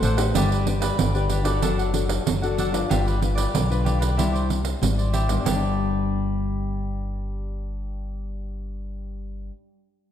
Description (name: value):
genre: samba and choro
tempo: 94 BPM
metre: 4/4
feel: straight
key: G major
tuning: A4 = 439 Hz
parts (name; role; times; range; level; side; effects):
- cavaquinho; accompaniment; 0.0-9.5 s; D4 to F#5; -30 LUFS; equal; none
- nylon-string guitar; accompaniment; 0.0-9.6 s; G2 to B4; -28 LUFS; left 5 dB; analog chorus
- upright bass; bass; 0.0-9.5 s; F#1 to C2; -25 LUFS; equal; none
- pandeiro; percussion; 0.0-5.6 s; none; -26 LUFS; right 8 dB; none
room: light reverb, studio reverb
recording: none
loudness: -21 LUFS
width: side -10 dB against mid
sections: 0.3-5.5 A section; 5.5-8.0 B section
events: none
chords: 0.3 G; 1.6 D/F#; 2.9 G7; 4.2 Cadd9; 5.5 G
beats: | 0.35 0.98 1.62 2.26 | 2.90 3.54 4.18 4.82 | 5.46 6.10 6.74 7.38